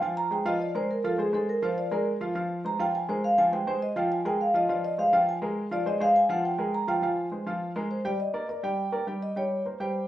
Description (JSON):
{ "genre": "jazz", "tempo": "205 BPM", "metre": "4/4", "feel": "straight", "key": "unclear", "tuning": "A4 = 440 Hz", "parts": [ { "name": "vibraphone with medium mallets", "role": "melody", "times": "0.0-10.1 s", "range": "Ab4 to Bb5", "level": "-26 LUFS", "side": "equal", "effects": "plate reverb" }, { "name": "warm baby grand piano", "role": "accompaniment", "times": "0.0-10.0 s", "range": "F3 to G5", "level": "-29 LUFS", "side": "equal", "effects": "none" } ], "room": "wet studio reverb, RT60 0.5 s", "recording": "heard from further back in the room, nothing above 10.9 kHz", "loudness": "-25 LUFS", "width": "side -13 dB against mid", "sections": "0.0-8.2 A section; 8.2-10.1 B section", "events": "vibraphone solo 0.0-8.2", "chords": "0.0 Fm; 0.6 Bb5; 1.2 Fm; 1.8 Bb5; 2.4 Fm; 2.9 Bb5; 3.5 Fm; 4.1 Bb5; 4.7 Fm; 5.3 Bb5; 5.9 Fm; 6.4 Bb5; 7.0 Fm; 7.6 Bb5; 8.2 Ebmaj7; 9.4 C5" }